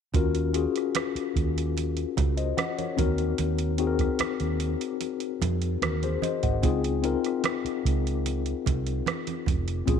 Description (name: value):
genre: lush 1970s-style soul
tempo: 74 BPM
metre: 4/4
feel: straight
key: Eb dorian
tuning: A4 = 440 Hz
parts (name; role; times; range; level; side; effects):
- mellow tine electric piano; accompaniment; 0.1-10.0 s; C4 to Gb5; -28 LUFS; left 11 dB; medium stereo tremolo
- vintage muted fingered electric bass; bass; 0.1-10.0 s; F1 to F2; -28 LUFS; right 2 dB; none
- soft vintage rhythm box; drums; 0.1-10.0 s; hi-hat, kick drum, rim click; -29 LUFS; right 5 dB; none
- congas; percussion; 0.1-10.0 s; none; -36 LUFS; right 13 dB; none
room: light reverb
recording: 1960s-style stereo with parts hard left and right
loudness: -25 LUFS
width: side -7 dB against mid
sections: 0.1-10.0 A section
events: none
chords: 0.1 Ebm7; 3.0 Ab7/Eb; 6.6 Dbmaj9